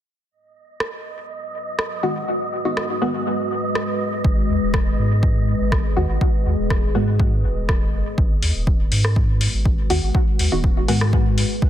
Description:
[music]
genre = dub techno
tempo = 122 BPM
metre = 4/4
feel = straight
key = G# minor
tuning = A4 = 440 Hz
[part]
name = deep dark ambient pad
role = sustained chords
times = 2.3-11.7 s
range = G#3 to B4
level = -27 LUFS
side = left 2 dB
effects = chorus, built-in reverb, sidechain pumping
[part]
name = wind-like tuned noise texture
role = texture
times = 1.0-8.2 s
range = D#5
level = -31 LUFS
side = right 3 dB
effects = built-in reverb, sidechain pumping
[part]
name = soft vintage rhythm box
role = drums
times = 0.8-11.5 s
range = hi-hat, rim click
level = -27 LUFS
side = equal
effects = dub echo
[part]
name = filtered dub chord stab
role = stabs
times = 2.0-11.0 s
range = D#3 to F#4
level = -24 LUFS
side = equal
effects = chorus, phaser, sidechain pumping, dub echo
[part]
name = soft dub sub bass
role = bass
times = 4.2-11.4 s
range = D#1 to G#2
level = -21 LUFS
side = equal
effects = sidechain pumping
[part]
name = electronic kick drum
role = drums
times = 4.2-11.7 s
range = none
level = -20 LUFS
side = equal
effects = overdrive
[sound]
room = light reverb, digital ambience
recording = dense, heavily limited modern master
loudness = -18 LUFS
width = side -11 dB against mid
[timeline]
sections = 0.3-8.2 A section; 8.2-11.7 B section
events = none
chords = 0.3 G#m7

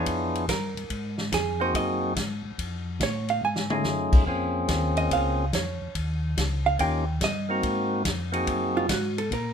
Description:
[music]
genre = soul jazz organ trio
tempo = 143 BPM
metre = 4/4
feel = swing 67% on 8ths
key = Ab mixolydian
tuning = A4 = 440 Hz
[part]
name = percussive tonewheel organ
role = melody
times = 0.0-8.9 s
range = A3 to Bb4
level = -27 LUFS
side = left 1 dB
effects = overdrive, stopped rotary speaker
[part]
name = hollow-body jazz guitar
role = accompaniment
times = 0.0-9.5 s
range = F4 to G#5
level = -28 LUFS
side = right 5 dB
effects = none
[part]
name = mellow tonewheel organ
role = bass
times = 0.0-9.5 s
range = Db2 to Bb2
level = -30 LUFS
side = left 1 dB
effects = chorus vibrato, slow rotary speaker
[part]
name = vintage drum kit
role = drums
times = 0.1-9.4 s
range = crash cymbal, hi-hat, kick drum, ride cymbal, snare drum, toms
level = -28 LUFS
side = left 1 dB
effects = none
[sound]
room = moderate club reverb, RT60 0.5 s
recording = minimal, uncompressed stereo recording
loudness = -24 LUFS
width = side -7 dB against mid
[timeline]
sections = 0.0-9.5 A section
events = hollow-body jazz guitar solo 0.0-9.5; drum fill 3.4-3.8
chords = 0.0 Ddim7; 0.9 Ab7; 2.6 F7alt; 4.3 Bbm7; 6.0 Eb7; 7.6 Ab7

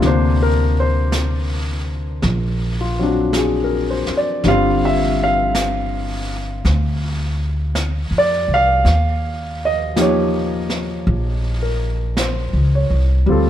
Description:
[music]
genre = jazz ballad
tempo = 54 BPM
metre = 4/4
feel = swing 68% on 8ths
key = unclear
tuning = A4 = 440 Hz
[part]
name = warm baby grand piano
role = accompaniment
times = 0.0-13.5 s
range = C3 to F5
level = -18 LUFS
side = left 1 dB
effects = none
[part]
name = upright bass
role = bass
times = 0.0-13.5 s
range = G1 to F2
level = -19 LUFS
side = equal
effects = none
[part]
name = jazz brush drum kit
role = drums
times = 0.0-13.5 s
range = brushed snare drum, hi-hat, snare drum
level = -28 LUFS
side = right 1 dB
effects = none
[sound]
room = little or no reverb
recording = dark, warm production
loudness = -16 LUFS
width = side -11 dB against mid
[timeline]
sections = 0.0-13.5 A section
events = none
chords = 0.0 Daug7; 4.4 G7sus4; 8.9 Eb9

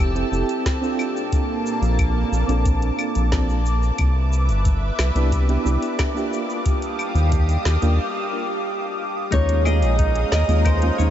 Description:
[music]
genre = sunset chillout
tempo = 90 BPM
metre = 4/4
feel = straight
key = unclear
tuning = A4 = 440 Hz
[part]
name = soft electric-piano-like synth keys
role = accompaniment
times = 0.0-11.1 s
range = Ab3 to A4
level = -27 LUFS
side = moving between left 3 dB and right 3 dB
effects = chorus, tremolo, auto-pan, diffuse ambient delay
[part]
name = lush unison pad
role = sustained chords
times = 0.0-11.1 s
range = Bb3 to E6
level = -27 LUFS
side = right 1 dB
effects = chorus, phaser
[part]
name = round analog bass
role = bass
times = 0.0-11.1 s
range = F1 to Eb2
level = -19 LUFS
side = equal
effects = none
[part]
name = smooth R&B drum kit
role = drums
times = 0.0-11.1 s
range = claves, hi-hat, shaker, snare drum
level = -32 LUFS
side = left 1 dB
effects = small room ambience
[part]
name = drifting glass-harmonics texture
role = texture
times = 0.0-8.0 s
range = A5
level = -38 LUFS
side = right 3 dB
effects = chorus, built-in reverb
[part]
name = electronic kick drum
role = drums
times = 0.7-10.8 s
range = none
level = -22 LUFS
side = equal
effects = small room ambience
[part]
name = flamenco guitar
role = melody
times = 9.3-11.1 s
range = C5 to Eb5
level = -23 LUFS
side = right 1 dB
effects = diffuse ambient delay
[part]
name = twelve-string electric guitar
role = arpeggios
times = 9.3-11.1 s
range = Eb4 to Db5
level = -30 LUFS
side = left 3 dB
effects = diffuse ambient delay
[sound]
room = moderate huge ambient reverb, RT60 9.0 s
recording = dreamy mix soaked in reverb, nothing above 7.8 kHz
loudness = -18 LUFS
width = side -11 dB against mid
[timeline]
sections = 0.0-9.3 A section; 9.3-11.1 B section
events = break 8.0-9.3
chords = 0.0 Fmaj9; 1.0 Bbmaj9; 4.0 Cmaj9; 6.3 Ebmaj9; 9.3 Eb9sus4

